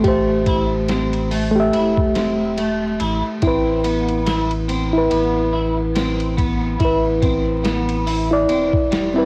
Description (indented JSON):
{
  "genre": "trip hop",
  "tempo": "71 BPM",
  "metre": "4/4",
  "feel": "swing 57% on 16ths",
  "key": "unclear",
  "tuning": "A4 = 435 Hz",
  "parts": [
    { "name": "reed electric piano", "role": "accompaniment", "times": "0.0-9.3 s", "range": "A3 to E5", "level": "-21 LUFS", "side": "equal", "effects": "harmonic tremolo, cassette tape, tape echo" },
    { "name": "clean electric guitar", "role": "arpeggios", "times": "0.0-9.3 s", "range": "G3 to E4", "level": "-27 LUFS", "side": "equal", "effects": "ensemble chorus, cassette tape, tape echo" },
    { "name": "warm sub bass", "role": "bass", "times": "0.0-9.3 s", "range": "E1 to A1", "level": "-27 LUFS", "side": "equal", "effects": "none" },
    { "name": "boom bap sampler-style drum kit", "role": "drums", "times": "0.0-9.2 s", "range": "hi-hat, kick drum, ride cymbal, snare drum", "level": "-27 LUFS", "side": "equal", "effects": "vintage 12-bit sampler grit, cassette tape" }
  ],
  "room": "light reverb",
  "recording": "home recording on cassette, vinyl crackle",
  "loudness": "-19 LUFS",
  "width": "mono",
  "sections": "0.0-9.3 A section",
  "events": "none",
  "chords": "0.0 Am7; 3.4 Cmaj7/A"
}